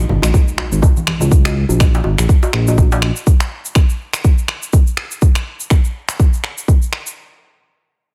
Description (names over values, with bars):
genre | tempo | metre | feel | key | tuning
afro house | 123 BPM | 4/4 | swing 56% on 16ths | Bb minor | A4 = 436 Hz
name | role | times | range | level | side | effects
smooth synth bass | bass | 0.0-3.1 s | Ab1 to Db2 | -18 LUFS | equal | sidechain pumping
impact | sound effects | 0.1-1.3 s | none | -30 LUFS | equal | none
congas | percussion | 0.1-1.3 s | none | -25 LUFS | equal | none
electronic finger snaps and shaker | drums | 0.2-7.1 s | none | -25 LUFS | equal | none
djembe | percussion | 0.2-3.1 s | none | -26 LUFS | equal | none
electronic kick drum | drums | 0.3-6.8 s | none | -14 LUFS | equal | none
room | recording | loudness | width
digital ambience | none | -15 LUFS | mono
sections
0.0-7.2 A section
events
impact 0.0-1.3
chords
none